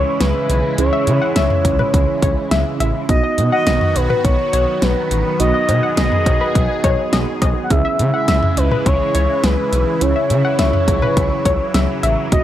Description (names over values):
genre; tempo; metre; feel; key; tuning
synth-pop; 104 BPM; 4/4; straight; C# minor; A4 = 440 Hz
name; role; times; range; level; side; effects
expressive synth lead; melody; 0.0-12.4 s; B4 to F#5; -20 LUFS; left 1 dB; chorus
muted felt-like synth keys; accompaniment; 0.0-12.4 s; B3 to G#4; -24 LUFS; right 10 dB; chorus
lush unison pad; sustained chords; 0.0-12.4 s; C#3 to G#4; -24 LUFS; equal; chorus, phaser
smooth gliding synth bass; bass; 0.0-12.4 s; A1 to C#3; -19 LUFS; equal; none
pop drum kit; drums; 0.2-12.4 s; cowbell, hi-hat, kick drum, snare drum, toms; -18 LUFS; equal; overdrive
warbly dusty pluck; second line; 0.9-12.1 s; B4 to F#5; -24 LUFS; left 5 dB; chorus, analog delay
room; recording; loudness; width
light reverb; none; -14 LUFS; side -12 dB against mid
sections
0.0-12.4 A section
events
none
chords
0.0 C#m; 3.1 B; 7.7 C#m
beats
0.21 | 0.78 1.36 1.94 2.51 | 3.09 3.67 4.24 4.82 | 5.40 5.97 6.55 7.13 | 7.71 8.28 8.86 9.44 | 10.01 10.59 11.17 11.74 | 12.32